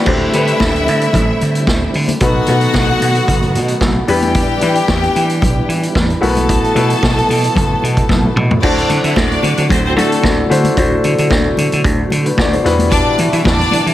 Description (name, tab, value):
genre	disco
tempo	112 BPM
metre	4/4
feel	straight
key	unclear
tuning	A4 = 440 Hz
part	bright studio string section	second line	0.0-13.9 s	A3 to A5	-19 LUFS	left 1 dB	none
part	warm concert grand piano	accompaniment	0.0-13.9 s	G3 to D5	-18 LUFS	left 3 dB	none
part	percussive tonewheel organ	sustained chords	0.0-13.9 s	B2 to F#4	-22 LUFS	right 3 dB	chorus vibrato, fast rotary speaker
part	vintage slap bass	bass	0.1-13.9 s	F#1 to E3	-17 LUFS	right 1 dB	none
part	vintage drum kit	drums	0.1-13.9 s	crash cymbal, hi-hat, kick drum, snare drum, toms	-18 LUFS	right 1 dB	none
part	congas	percussion	0.1-13.8 s	none	-23 LUFS	left 4 dB	none
room	light reverb, small room ambience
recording	none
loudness	-11 LUFS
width	side -13 dB against mid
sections	0.1-8.6 A section; 8.6-13.9 B section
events	drum fill 8.1-8.6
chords	0.1 D9sus4; 2.2 B7; 4.1 Em7; 6.2 B7sus4; 8.6 D7; 12.7 Em7